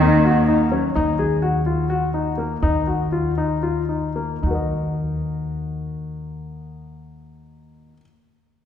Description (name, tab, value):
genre	contemporary instrumental, chamber music in an uneven meter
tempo	221-256 BPM (eighths)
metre	7/8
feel	straight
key	Eb minor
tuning	A4 = 435 Hz
part	warm cello	melody	0.0-0.7 s	Eb3	-21 LUFS	right 2 dB	none
part	dark clarinet	second line	0.0-1.0 s	Gb3 to Bb3	-22 LUFS	equal	none
part	warm baby grand piano	arpeggios	0.0-8.0 s	Bb3 to Eb5	-23 LUFS	left 4 dB	none
part	upright bass	bass	0.0-7.9 s	Eb2	-23 LUFS	equal	none
room	wet concert hall reverb, RT60 2.2 s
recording	heard from further back in the room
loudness	-19 LUFS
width	side -9 dB against mid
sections	1.0-4.4 A section; 4.4-8.2 B section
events	slowing down 1.0-4.4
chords	0.0 Ebm7; 1.0 Ebm; 2.6 Bbsus4/Eb (rootless); 4.4 Ebm